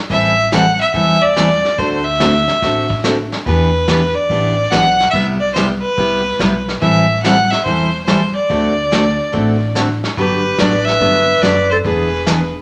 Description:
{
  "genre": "country, western swing",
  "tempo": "143 BPM",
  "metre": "4/4",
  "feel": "swing 66% on 8ths",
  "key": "unclear",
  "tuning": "A4 = 441 Hz",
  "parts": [
    { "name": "clear fiddle", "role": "melody", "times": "0.1-12.5 s", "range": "B4 to F#5", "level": "-18 LUFS", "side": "equal", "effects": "none" },
    { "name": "picked steel-string acoustic guitar", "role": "accompaniment", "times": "0.1-12.4 s", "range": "C3 to A4", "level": "-20 LUFS", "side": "equal", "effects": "none" },
    { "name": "upright bass", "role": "bass", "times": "0.1-12.5 s", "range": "E1 to E2", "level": "-25 LUFS", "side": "equal", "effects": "none" },
    { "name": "vintage brush drum kit", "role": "drums", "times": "0.1-12.6 s", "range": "brushed snare drum, hi-hat, kick drum, snare drum", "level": "-25 LUFS", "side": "equal", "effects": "none" },
    { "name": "breathy clarinet", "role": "second line", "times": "10.2-12.5 s", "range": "G4 to B4", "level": "-21 LUFS", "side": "equal", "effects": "none" }
  ],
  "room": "wet large studio reverb, RT60 1.0 s",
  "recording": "none",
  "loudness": "-15 LUFS",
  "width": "mono",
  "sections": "0.0-12.6 A section",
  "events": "none",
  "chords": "0.1 Am7; 1.8 D7; 3.5 Em7; 5.1 Cmaj7; 6.8 Am7; 8.5 D7; 10.2 Gmaj7; 11.8 E7",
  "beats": "| 0.10 0.52 0.94 1.36 | 1.78 2.20 2.62 3.04 | 3.46 3.88 4.30 4.72 | 5.14 5.56 5.98 6.40 | 6.82 7.24 7.66 8.08 | 8.50 8.92 9.34 9.76 | 10.17 10.59 11.01 11.43 | 11.85 12.27"
}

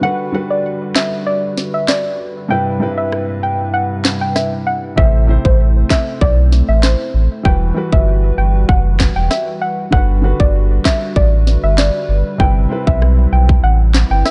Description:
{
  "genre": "dancehall",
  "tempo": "97 BPM",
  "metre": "4/4",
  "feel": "straight",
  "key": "unclear",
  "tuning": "A4 = 438 Hz",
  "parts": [
    { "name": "soft round pluck", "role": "melody", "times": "0.0-14.3 s", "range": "C5 to G5", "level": "-22 LUFS", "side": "equal", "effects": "chorus, delay" },
    { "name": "warm grand piano", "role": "accompaniment", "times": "0.0-14.3 s", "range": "G2 to C5", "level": "-26 LUFS", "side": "equal", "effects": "none" },
    { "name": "hollow soft pad", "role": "sustained chords", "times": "0.0-14.3 s", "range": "G2 to C5", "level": "-28 LUFS", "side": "equal", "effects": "chorus, sidechain pumping" },
    { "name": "island pop drum kit", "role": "drums", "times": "1.0-14.3 s", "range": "handclaps, kick drum, rim click, snare drum", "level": "-18 LUFS", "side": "equal", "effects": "overdrive" },
    { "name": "sub bass with octave", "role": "bass", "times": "5.0-14.2 s", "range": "E1 to B1", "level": "-15 LUFS", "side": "equal", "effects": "none" }
  ],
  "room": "little or no reverb",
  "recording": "dark, warm production, nothing above 11.0 kHz",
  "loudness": "-15 LUFS",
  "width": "mono",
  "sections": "0.0-14.3 A section",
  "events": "break 0.0-5.0; kick muted 13.6-14.3",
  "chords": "0.0 Gmaj7; 2.5 Cmaj7/G; 5.0 Am; 7.5 Emadd9; 9.9 Gmaj7; 12.4 Cmaj7/G",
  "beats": "| 0.03 0.65 1.26 1.88 | 2.50 3.12 3.74 4.36 | 4.98 5.59 6.21 6.83 | 7.45 8.07 8.69 9.31 | 9.93 10.54 11.16 11.78 | 12.40 13.02 13.64 14.26"
}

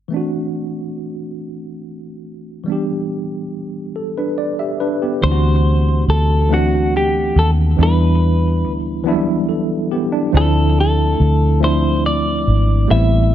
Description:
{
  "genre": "slow six-eight R&B",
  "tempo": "47 BPM (dotted quarters)",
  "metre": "6/8",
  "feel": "straight",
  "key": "unclear",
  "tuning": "A4 = 440 Hz",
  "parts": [
    { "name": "tine electric piano", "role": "accompaniment", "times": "0.1-13.3 s", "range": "E3 to F#5", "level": "-20 LUFS", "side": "right 1 dB", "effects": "overdrive, fast stereo tremolo" },
    { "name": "clean electric guitar", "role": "melody", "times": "5.2-13.3 s", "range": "F#4 to E5", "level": "-20 LUFS", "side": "left 1 dB", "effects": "none" },
    { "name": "vintage muted fingered electric bass", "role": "bass", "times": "5.2-13.3 s", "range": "G#1 to E2", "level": "-15 LUFS", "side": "equal", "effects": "none" }
  ],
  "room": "digital ambience",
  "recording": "none",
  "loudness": "-14 LUFS",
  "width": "side -11 dB against mid",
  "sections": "0.1-5.2 A section; 5.2-13.3 B section",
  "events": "none",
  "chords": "0.1 D9; 2.7 Em7; 5.2 D9; 7.8 Em7; 10.3 Dm9",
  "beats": "| 0.12 1.40 | 2.67 3.95 | 5.22 6.50 | 7.78 9.05 | 10.33 11.61 | 12.88"
}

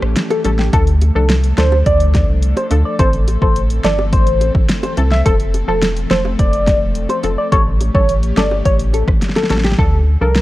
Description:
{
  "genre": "dancehall",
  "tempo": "106 BPM",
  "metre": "4/4",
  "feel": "straight",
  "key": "unclear",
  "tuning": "A4 = 442 Hz",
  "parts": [
    { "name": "airy breathy pad", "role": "sustained chords", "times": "0.0-9.8 s", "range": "E3 to A4", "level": "-26 LUFS", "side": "left 1 dB", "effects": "chorus, sidechain pumping" },
    { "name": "warm sub bass", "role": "bass", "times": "0.0-10.4 s", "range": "E1 to D2", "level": "-16 LUFS", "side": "equal", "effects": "none" },
    { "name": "deep house drum kit", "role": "drums", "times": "0.0-10.4 s", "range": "hi-hat, kick drum, rim click, snare drum", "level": "-16 LUFS", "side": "equal", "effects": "overdrive" },
    { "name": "soft struck synth lead", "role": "melody", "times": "0.3-10.4 s", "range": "G4 to E5", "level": "-19 LUFS", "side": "equal", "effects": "chorus, phaser, tape echo" },
    { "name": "bongos", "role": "percussion", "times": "0.3-9.6 s", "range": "none", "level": "-26 LUFS", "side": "right 3 dB", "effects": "none" },
    { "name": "punchy chord stab", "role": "accompaniment", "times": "0.4-10.4 s", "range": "E3 to A4", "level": "-23 LUFS", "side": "left 2 dB", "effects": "chorus, sidechain pumping" }
  ],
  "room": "little or no reverb",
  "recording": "worn, warbling old tape, cassette tape, warbly pitch drift",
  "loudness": "-12 LUFS",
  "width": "side -16 dB against mid",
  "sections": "0.0-9.8 A section",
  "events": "break 0.0-0.7; drum fill 9.2-9.8",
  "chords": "0.0 A7; 0.7 Dm; 3.0 Am; 5.3 F; 7.5 A7; 9.8 Dm",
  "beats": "0.16 | 0.73 1.30 1.86 2.43 | 2.99 3.56 4.13 4.69 | 5.26 5.82 6.39 6.96 | 7.52 8.09 8.65 9.22 | 9.79 10.35"
}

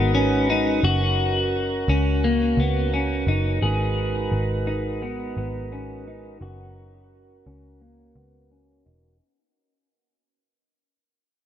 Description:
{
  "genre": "dream pop",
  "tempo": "86 BPM",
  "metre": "4/4",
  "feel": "straight",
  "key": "unclear",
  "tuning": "A4 = 443 Hz",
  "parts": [
    { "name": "mellow tonewheel organ", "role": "sustained chords", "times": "0.0-9.2 s", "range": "G#3 to B4", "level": "-27 LUFS", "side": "right 2 dB", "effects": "slow rotary speaker, low-pass filter" },
    { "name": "clean electric guitar", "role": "arpeggios", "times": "0.0-9.2 s", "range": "A#3 to G#4", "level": "-24 LUFS", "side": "left 2 dB", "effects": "lush chorus, low-pass filter, digital delay" },
    { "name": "vintage muted picked electric bass", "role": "bass", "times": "0.0-9.2 s", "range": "E1 to C#2", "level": "-24 LUFS", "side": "equal", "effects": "none" }
  ],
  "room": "moderate huge ambient reverb, RT60 4.6 s",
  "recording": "none",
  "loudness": "-20 LUFS",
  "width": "side -10 dB against mid",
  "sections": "0.0-9.2 A section",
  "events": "fade-out 0.0-9.2; filter sweep 0.0-9.2",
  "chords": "0.0 G#m7; 0.8 F#; 3.6 G#m7; 6.4 F#",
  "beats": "0.14 | 0.83 1.53 2.23 2.93 | 3.62 4.32 5.02 5.72 | 6.41 7.11 7.81 8.51"
}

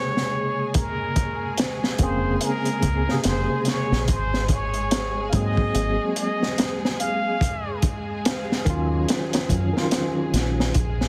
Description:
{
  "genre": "trip hop",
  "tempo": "72 BPM",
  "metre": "4/4",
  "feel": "swing 60% on 16ths",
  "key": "unclear",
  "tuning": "A4 = 440 Hz",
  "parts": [
    { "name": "trumpet with plunger mute", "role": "melody", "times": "0.0-7.8 s", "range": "Bb4 to F5", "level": "-31 LUFS", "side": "equal", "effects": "dub echo" },
    { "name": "overdriven tine electric piano", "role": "accompaniment", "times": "0.0-10.7 s", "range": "C3 to Ab4", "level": "-29 LUFS", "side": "equal", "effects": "fast tremolo" },
    { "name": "rich studio string section", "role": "sustained chords", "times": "0.0-11.1 s", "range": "Ab3 to Ab4", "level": "-35 LUFS", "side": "equal", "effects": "none" },
    { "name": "crunchy breakbeat drum kit", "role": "drums", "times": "0.2-11.1 s", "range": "hi-hat, kick drum, snare drum", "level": "-27 LUFS", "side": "equal", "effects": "none" },
    { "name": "deep dub fingered electric bass", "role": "bass", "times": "2.0-11.1 s", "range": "F1 to Ab2", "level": "-27 LUFS", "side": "equal", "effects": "none" }
  ],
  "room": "studio reverb",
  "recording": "heavily compressed radio sound, multiband compression",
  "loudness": "-23 LUFS",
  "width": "mono",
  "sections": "0.0-11.1 A section",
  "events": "none",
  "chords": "0.0 Bbm9; 4.1 Ab9; 7.4 Ebm9",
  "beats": "| 0.75 1.58 2.42 3.25 | 4.08 4.92 5.75 6.58 | 7.42 8.25 9.08 9.91 | 10.75"
}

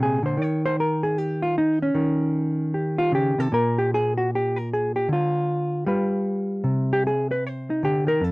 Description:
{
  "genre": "solo jazz",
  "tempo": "153 BPM",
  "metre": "4/4",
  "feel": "swing 65% on 8ths",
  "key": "unclear",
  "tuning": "A4 = 444 Hz",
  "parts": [
    { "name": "hollow-body jazz guitar", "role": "solo", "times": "0.0-8.3 s", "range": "F2 to Db5", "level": "-21 LUFS", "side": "equal", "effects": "none" }
  ],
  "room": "little or no reverb",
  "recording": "dry, close 1970s-style studio recording",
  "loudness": "-21 LUFS",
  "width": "side -23 dB against mid",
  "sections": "0.0-8.3 A section",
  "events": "hollow-body jazz guitar solo 0.0-8.3",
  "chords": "0.4 Eb7; 3.5 N.C.; 5.8 G7; 6.6 Cm",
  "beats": "| 0.36 0.75 1.15 1.54 | 1.93 2.32 2.71 3.10 | 3.50 3.89 4.28 4.67 | 5.06 5.46 5.85 6.24 | 6.63 7.02 7.41 7.80 | 8.20"
}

